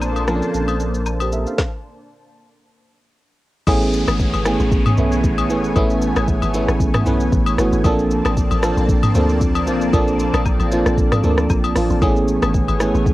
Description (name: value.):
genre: amapiano.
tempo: 115 BPM.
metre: 4/4.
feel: swing 55% on 16ths.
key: unclear.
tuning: A4 = 436 Hz.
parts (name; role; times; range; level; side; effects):
FM electric piano; accompaniment; 0.0-13.1 s; E3 to F5; -19 LUFS; right 2 dB; chorus.
lush unison pad; sustained chords; 0.0-13.1 s; A3 to A5; -25 LUFS; left 1 dB; chorus, phaser, sidechain pumping.
warm sub bass; bass; 0.0-1.5 s; Bb1; -23 LUFS; equal; none.
afro-pop drum kit; drums; 0.0-13.1 s; crash cymbal, hi-hat, kick drum, rim click, shaker, snare drum, toms; -20 LUFS; equal; cassette tape.
woodblock and agogo bells; percussion; 0.0-12.8 s; none; -28 LUFS; left 6 dB; none.
deep log drum bass; bass; 3.7-13.1 s; G#1 to D2; -21 LUFS; equal; none.
downlifter; sound effects; 3.7-7.8 s; none; -34 LUFS; left 1 dB; none.
room: little or no reverb.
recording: home recording on cassette.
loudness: -15 LUFS.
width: side -17 dB against mid.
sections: 0.0-3.7 A section; 3.7-13.1 B section.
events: stop 1.6-3.7; drop 3.7-13.1.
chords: 0.0 Bbmaj9; 3.7 Amaj9; 7.8 Bbmaj9; 12.0 Amaj9.